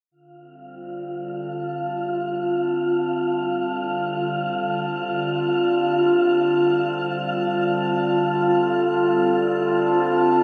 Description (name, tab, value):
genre	ambient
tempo	free time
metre	none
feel	none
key	D minor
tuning	A4 = 440 Hz
part	evolving wavetable pad	sustained chords	0.9-10.4 s	D3 to A5	-27 LUFS	equal	phaser, built-in reverb
part	wind-like tuned noise texture	texture	0.8-10.4 s	F4 to F5	-24 LUFS	equal	built-in reverb
room	wet huge ambient reverb, RT60 7.5 s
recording	none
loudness	-22 LUFS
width	mono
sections	0.1-10.4 A section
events	fade-in on ambient pad 0.1-10.4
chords	0.1 Dm7